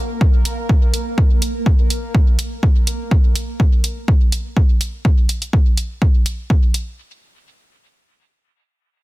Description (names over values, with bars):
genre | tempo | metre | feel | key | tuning
dub techno | 124 BPM | 4/4 | straight | unclear | A4 = 438 Hz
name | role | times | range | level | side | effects
bubbling stepped-filter texture | texture | 0.0-3.1 s | Bb3 to Bb4 | -28 LUFS | right 1 dB | chorus, built-in reverb, sidechain pumping
electronic kick drum | drums | 0.2-6.6 s | none | -14 LUFS | equal | overdrive
electronic hi-hat | drums | 0.5-6.8 s | none | -26 LUFS | right 1 dB | overdrive
room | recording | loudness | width
little or no reverb | dense, heavily limited modern master | -14 LUFS | side -18 dB against mid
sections
0.0-7.0 A section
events
none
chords
none